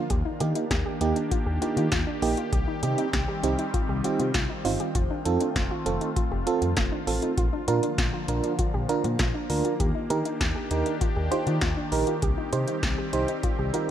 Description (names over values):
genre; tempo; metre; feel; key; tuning
synth-pop; 99 BPM; 4/4; straight; unclear; A4 = 444 Hz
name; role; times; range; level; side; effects
FM electric piano with tremolo; accompaniment; 0.0-13.9 s; Bb3 to C5; -28 LUFS; right 5 dB; shimmer reverb
phased analog pad; sustained chords; 0.0-13.9 s; D3 to G4; -32 LUFS; left 1 dB; phaser, chorus, shimmer reverb
soft round pluck; arpeggios; 0.0-13.8 s; D4 to G4; -34 LUFS; left 3 dB; chorus, tape echo, shimmer reverb
smooth gliding synth bass; bass; 0.1-13.7 s; F1 to Eb3; -29 LUFS; left 1 dB; none
electro analog drum machine; drums; 0.1-13.9 s; hi-hat, kick drum, snare drum; -28 LUFS; left 1 dB; none
room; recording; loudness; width
light reverb, digital ambience; none; -24 LUFS; side -10 dB against mid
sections
0.0-13.9 A section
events
none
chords
0.1 Ebmaj7; 2.5 Cm; 5.0 F7; 7.4 Bb; 9.8 Ebmaj7; 12.2 Cm